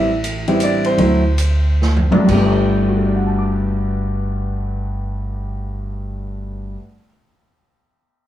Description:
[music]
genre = jazz piano trio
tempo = 120-171 BPM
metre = 3/4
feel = swing 64% on 8ths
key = G major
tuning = A4 = 437 Hz
[part]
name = warm concert grand piano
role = melody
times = 0.0-7.0 s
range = G2 to D6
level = -18 LUFS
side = equal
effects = none
[part]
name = upright bass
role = bass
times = 0.0-6.7 s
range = F#1 to D2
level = -20 LUFS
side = equal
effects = none
[part]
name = swinging big-band drum kit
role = drums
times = 0.2-2.4 s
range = crash cymbal, hi-hat, kick drum, ride cymbal, snare drum, toms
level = -25 LUFS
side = right 2 dB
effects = none
[sound]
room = moderate studio ambience, RT60 0.5 s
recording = none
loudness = -15 LUFS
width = side -12 dB against mid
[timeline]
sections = 0.0-2.3 A section; 2.3-5.3 B section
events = slowing down 0.0-2.3; drum fill 1.8-2.3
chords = 0.0 Am9; 1.0 D7; 2.3 Gmaj9

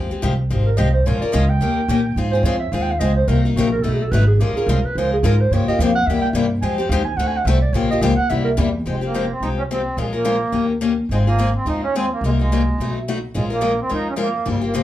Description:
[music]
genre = acoustic string swing (jazz manouche)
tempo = 215 BPM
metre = 4/4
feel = swing 56% on 8ths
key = F minor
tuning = A4 = 439 Hz
[part]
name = picked steel-string acoustic guitar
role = accompaniment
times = 0.0-14.8 s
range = B2 to Bb4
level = -21 LUFS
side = left 4 dB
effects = none
[part]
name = upright bass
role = bass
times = 0.0-14.8 s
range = F1 to Bb2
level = -20 LUFS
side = equal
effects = none
[part]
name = breathy clarinet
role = second line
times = 0.7-8.5 s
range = Eb4 to Ab5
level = -23 LUFS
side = right 4 dB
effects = none
[part]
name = accordion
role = melody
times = 8.9-14.8 s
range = G3 to Eb4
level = -23 LUFS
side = right 3 dB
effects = none
[sound]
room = wet club reverb, RT60 0.6 s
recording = heard from further back in the room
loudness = -16 LUFS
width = side -13 dB against mid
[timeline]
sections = 0.0-8.9 A section; 8.9-14.8 B section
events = clarinet solo 0.0-8.9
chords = 0.0 Fmadd9; 1.1 Bbm7; 1.6 Eb7; 2.2 Ab6; 3.3 Cm7b5; 3.8 B7; 4.4 Bbm7; 5.5 Gm7b5; 6.1 C7; 6.6 Fmadd9; 7.2 D7; 7.7 Gm7b5; 8.3 C7; 8.9 Fmadd9; 10.0 Bbm7; 10.5 Eb7; 11.1 Ab6; 12.2 Cm7b5; 12.8 B7; 13.3 Bbm7

